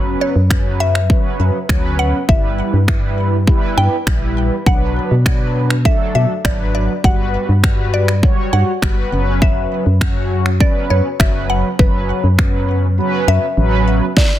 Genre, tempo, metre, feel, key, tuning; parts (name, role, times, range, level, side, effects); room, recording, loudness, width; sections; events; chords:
dance-pop; 101 BPM; 4/4; straight; A4 = 440 Hz
mellow synth brass; accompaniment; 0.0-14.1 s; F#3 to C#5; -20 LUFS; right 1 dB; chorus, sidechain pumping, low-pass filter
organ-like FM bass; bass; 0.0-14.0 s; F#1 to B2; -16 LUFS; equal; sidechain pumping
mallet-like synth pluck; melody; 0.2-14.4 s; B4 to G5; -22 LUFS; left 1 dB; chorus, phaser, low-pass filter, digital delay
pop drum kit; drums; 0.5-14.3 s; finger snaps, kick drum, snare drum; -15 LUFS; equal; soft clipping on snare
light reverb; dense, heavily limited modern master; -13 LUFS; side -12 dB against mid
0.0-14.2 A section
silent gap 13.0-14.2; drum fill 14.2
0.0 F#sus4; 2.3 Em/G; 4.7 Bm; 7.0 Gmaj7; 9.1 F#sus4